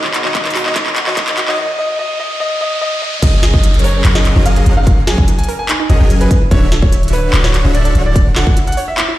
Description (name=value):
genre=future bass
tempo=146 BPM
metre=4/4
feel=half-time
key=F# major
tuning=A4 = 440 Hz
part: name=bright concert grand piano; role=melody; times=0.0-9.1 s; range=B4 to G#5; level=-21 LUFS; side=left 1 dB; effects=sidechain pumping, digital delay
part: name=warm studio string section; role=sustained chords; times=0.0-1.6 s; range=B2 to D#4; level=-30 LUFS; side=left 3 dB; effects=sidechain pumping
part: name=supersaw chords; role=riff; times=0.0-8.6 s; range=D3 to G#5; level=-21 LUFS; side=equal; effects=sidechain pumping
part: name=trap drum kit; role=drums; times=0.0-9.1 s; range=crash cymbal, handclaps, hi-hat, snare drum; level=-18 LUFS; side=equal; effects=high-pass filter on hats, high-pass filter on snare, high-pass filter on cymbals
part: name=riser and downlifter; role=sound effects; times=0.4-6.5 s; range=none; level=-24 LUFS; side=equal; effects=none
part: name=wide unison pluck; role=arpeggios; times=0.1-9.1 s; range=D#4 to C#5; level=-26 LUFS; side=right 4 dB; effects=sidechain pumping, digital delay
part: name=electronic kick drum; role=drums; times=0.3-8.5 s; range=none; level=-12 LUFS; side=equal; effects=none
part: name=warm 808-style bass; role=bass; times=3.2-8.6 s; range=D1 to F#1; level=-12 LUFS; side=equal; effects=sidechain pumping
room=light reverb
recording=played on a big sound system in a bare room, stone room reverb, high-pass filter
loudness=-11 LUFS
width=side -15 dB against mid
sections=0.0-3.2 A section; 3.2-9.2 B section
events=build-up 0.0-3.2; drum fill 0.0-1.6; riser 0.4-3.2; break 1.6-3.2; drop 3.2-9.2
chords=0.0 B6; 3.2 F#69; 6.3 Dmaj9